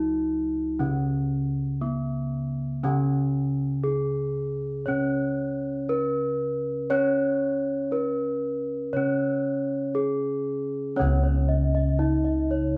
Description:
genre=Javanese gamelan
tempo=59 BPM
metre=4/4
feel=straight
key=C# slendro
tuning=A4 = 438 Hz
part: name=gamelan-type bronze metallophone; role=melody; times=0.0-12.8 s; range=B3-40c to C#5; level=-30 LUFS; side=equal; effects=none
part: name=gamelan-type bronze metallophone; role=accompaniment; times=0.0-12.8 s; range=C#3 to C#4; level=-30 LUFS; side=equal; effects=none
part: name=gamelan-type bossed gongs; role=bass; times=0.0-12.8 s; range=C#2 to C#5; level=-33 LUFS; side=equal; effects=none
part: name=gamelan-type bronze metallophone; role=arpeggios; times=11.0-12.7 s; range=C#5 to D#5+40c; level=-33 LUFS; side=equal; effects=none
room=moderate large studio reverb, RT60 1.1 s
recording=band playing live in one room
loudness=-26 LUFS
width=mono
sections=0.0-11.0 A section; 11.0-12.8 A section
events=none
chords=none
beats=0.81 1.82 | 2.84 3.86 4.87 5.89 | 6.91 7.92 8.94 9.96 | 10.97 11.99

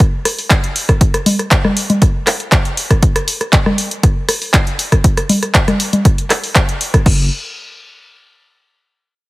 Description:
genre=acid house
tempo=119 BPM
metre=4/4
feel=straight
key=unclear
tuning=A4 = 441 Hz
part: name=electronic kick drum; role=drums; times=0.0-7.2 s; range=none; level=-12 LUFS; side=equal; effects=none
part: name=punchy analog drum machine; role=drums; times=0.0-7.2 s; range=congas, crash cymbal, handclaps, hi-hat, rim click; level=-15 LUFS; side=equal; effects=none
part: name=saturated sub bass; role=bass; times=7.1-7.3 s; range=F#1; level=-16 LUFS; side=equal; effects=sidechain pumping
room=little or no reverb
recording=heavily compressed radio sound, multiband compression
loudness=-11 LUFS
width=side -20 dB against mid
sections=0.0-7.1 A section; 7.1-9.1 B section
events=none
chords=none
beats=0.00 0.51 | 1.01 1.51 2.02 2.52 | 3.03 3.53 4.03 4.54 | 5.04 5.55 6.05 6.55 | 7.06

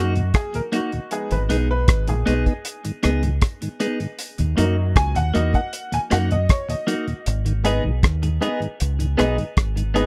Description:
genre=roots reggae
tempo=78 BPM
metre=4/4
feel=straight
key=G# minor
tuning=A4 = 440 Hz
part: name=clean electric guitar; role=accompaniment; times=0.0-10.1 s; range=A#3 to G#4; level=-29 LUFS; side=equal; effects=spring reverb, tape echo
part: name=mellow tonewheel organ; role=accompaniment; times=0.0-10.0 s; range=D#2 to D#4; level=-28 LUFS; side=equal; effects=slow rotary speaker
part: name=bright upright piano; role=stabs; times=0.0-10.1 s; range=F#3 to G#5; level=-29 LUFS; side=equal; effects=none
part: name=deep dub fingered electric bass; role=bass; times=0.0-10.1 s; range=G#1 to F#2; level=-23 LUFS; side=equal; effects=none
part: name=cloth-damped thuddy drum kit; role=drums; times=0.2-10.1 s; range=hi-hat, kick drum, rim click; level=-23 LUFS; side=equal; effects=none
room=little or no reverb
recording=none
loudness=-22 LUFS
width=mono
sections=0.0-7.3 A section; 7.3-10.1 B section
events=upright piano solo 0.0-7.3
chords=0.0 D#m; 1.1 G#m; 4.2 D#m; 7.3 G#m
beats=0.34 | 1.11 1.88 2.65 3.42 | 4.19 4.96 5.73 6.50 | 7.26 8.03 8.80 9.57

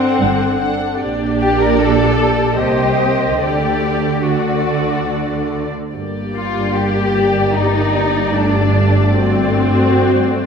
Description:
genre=classical, slow romantic movement for string orchestra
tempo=73 BPM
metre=3/4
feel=uneven beats, rubato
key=G minor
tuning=A4 = 443 Hz
part: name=muted symphonic violin section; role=melody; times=0.0-10.5 s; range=D5 to F#5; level=-23 LUFS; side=left 2 dB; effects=none
part: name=muted symphonic violin section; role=second line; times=0.0-10.5 s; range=C4 to Bb4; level=-18 LUFS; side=left 2 dB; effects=none
part: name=muted symphonic viola section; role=accompaniment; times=0.0-10.5 s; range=A3 to C5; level=-20 LUFS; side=equal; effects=none
part: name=muted symphonic cello section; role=bass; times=0.0-10.5 s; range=G2 to D3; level=-21 LUFS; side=right 3 dB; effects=none
part: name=muted symphonic double bass section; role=bass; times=0.0-10.5 s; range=G1 to D2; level=-21 LUFS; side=right 2 dB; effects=none
room=wet scoring stage reverb, RT60 1.7 s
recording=heard from further back in the room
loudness=-13 LUFS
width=side -6 dB against mid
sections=0.0-10.5 A section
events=none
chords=0.0 D7/G; 1.0 Gm/Bb; 2.6 Cm7; 3.4 D; 6.0 Gm; 8.4 D7/G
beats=0.22 | 1.02 1.81 2.60 | 3.44 4.27 5.10 | 5.95 6.77 7.57 | 8.37 9.14 9.92

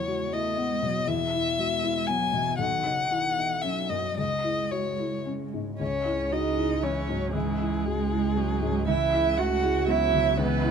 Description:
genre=neoclassical piano and strings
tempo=118 BPM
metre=3/4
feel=rubato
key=C# minor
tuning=A4 = 440 Hz
part: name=warm violin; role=melody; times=0.0-10.7 s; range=G#4 to G#5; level=-29 LUFS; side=left 5 dB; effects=none
part: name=dark cello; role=second line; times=0.0-10.7 s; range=C#3 to F#4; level=-29 LUFS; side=right 8 dB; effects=none
part: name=felt-muted upright piano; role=accompaniment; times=0.0-10.7 s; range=B1 to F#4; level=-30 LUFS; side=left 4 dB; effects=none
part: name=dark double bass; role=bass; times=5.8-10.7 s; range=C#2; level=-31 LUFS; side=equal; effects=none
part: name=rich viola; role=accompaniment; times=6.3-10.7 s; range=E3 to A3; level=-33 LUFS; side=right 4 dB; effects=none
room=light reverb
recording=minimal, uncompressed stereo recording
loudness=-24 LUFS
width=side -7 dB against mid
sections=0.0-5.8 A section; 5.8-10.7 A section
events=none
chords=0.0 E; 2.6 Badd9; 4.2 C#m; 8.9 Amaj13/C#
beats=0.07 0.58 | 1.08 1.59 2.09 | 2.59 3.11 3.63 | 4.17 4.72 5.26 | 5.80 6.32 6.83 | 7.34 7.86 8.37 | 8.88 9.38 9.89 | 10.39

